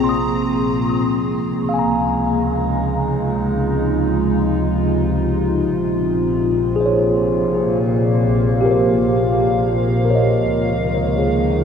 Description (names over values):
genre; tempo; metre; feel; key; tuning
ambient; 76 BPM; 3/4; straight; unclear; A4 = 440 Hz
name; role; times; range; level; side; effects
warbly tape-like pad; sustained chords; 0.0-11.6 s; Bb2 to F5; -19 LUFS; equal; chorus, built-in reverb, phaser, shimmer reverb
mellow tine electric piano; arpeggios; 0.0-11.6 s; G4 to Eb6; -21 LUFS; equal; medium stereo tremolo, ping-pong delay, shimmer reverb
rich studio double bass section; bass; 0.0-11.6 s; Bb1 to Db2; -24 LUFS; equal; tube saturation
analog drone; drone; 0.0-11.6 s; C3 to F3; -24 LUFS; equal; chorus
rich chamber violin section; texture; 0.0-1.1 s; Bb5; -37 LUFS; equal; shimmer reverb
room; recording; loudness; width
wet huge ambient reverb, RT60 7.9 s; none; -16 LUFS; side -7 dB against mid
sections
0.0-1.0 A section; 1.0-11.6 B section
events
fade-out on synth drone 1.0-11.6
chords
0.0 Bbm7; 1.0 Dbadd9; 5.7 Bbm; 10.4 Dbadd9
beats
0.24 | 1.04 1.83 2.62 | 3.40 4.18 4.96 | 5.74 6.51 7.29 | 8.08 8.86 9.65 | 10.45 11.24